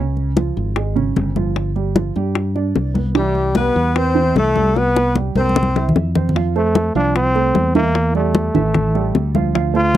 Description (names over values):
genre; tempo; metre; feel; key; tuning
Afro-Cuban jazz; 150 BPM; 4/4; straight; C major, F major from 6.4 s; A4 = 436 Hz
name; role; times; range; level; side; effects
dark upright piano; accompaniment; 0.0-10.0 s; Db3 to F5; -22 LUFS; right 10 dB; none
fingered electric bass; bass; 0.0-10.0 s; G1 to G2; -20 LUFS; equal; none
congas; percussion; 0.2-10.0 s; none; -21 LUFS; left 2 dB; none
bongos; percussion; 0.4-10.0 s; none; -21 LUFS; left 7 dB; none
brilliant trombone; melody; 3.2-10.0 s; G3 to F4; -18 LUFS; equal; none
breathy tenor saxophone; second line; 3.2-5.9 s; G4 to C5; -24 LUFS; left 9 dB; none
room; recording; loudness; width
little or no reverb; dry, close 1970s-style studio recording; -15 LUFS; side -12 dB against mid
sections
0.0-6.4 A section; 6.4-10.0 B section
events
drum fill 4.8-6.4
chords
0.0 Db; 1.6 G7; 3.2 Cmaj7; 5.6 C7; 6.4 Fmaj7; 8.0 Gm69; 8.8 A5